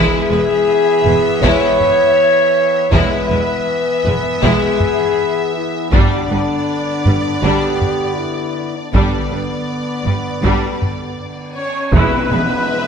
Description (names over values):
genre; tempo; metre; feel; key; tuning
cinematic, epic orchestral film score; 80 BPM; 4/4; straight; E mixolydian; A4 = 440 Hz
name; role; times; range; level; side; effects
warm symphonic violin section; melody; 0.0-12.9 s; D5 to E5; -25 LUFS; left 4 dB; none
rich symphonic violin section; second line; 0.0-12.9 s; D4 to C#5; -23 LUFS; left 2 dB; none
warm studio viola section; accompaniment; 0.0-12.4 s; G3 to B4; -22 LUFS; right 1 dB; none
bright trombone section; sustained chords; 0.0-12.9 s; D3 to B3; -23 LUFS; right 3 dB; none
warm French horn section; sustained chords; 0.0-12.9 s; B3 to C#5; -17 LUFS; left 2 dB; none
clear symphonic double bass section; bass; 0.3-12.4 s; E1 to G1; -23 LUFS; right 4 dB; none
rich symphonic cello section; bass; 0.3-12.4 s; E2 to G2; -21 LUFS; right 2 dB; none
taiko ensemble; drums; 1.1-12.6 s; none; -20 LUFS; equal; none
cymbal swell and tam-tam; percussion; 8.9-12.9 s; none; -27 LUFS; left 3 dB; none
mellow trumpet section; stabs; 11.6-12.9 s; B4 to C#5; -20 LUFS; equal; none
room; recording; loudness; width
wet scoring stage reverb, RT60 1.7 s; none; -13 LUFS; side -6 dB against mid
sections
0.0-11.9 A section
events
band accent 11.9-12.7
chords
0.0 E; 5.9 G; 11.9 E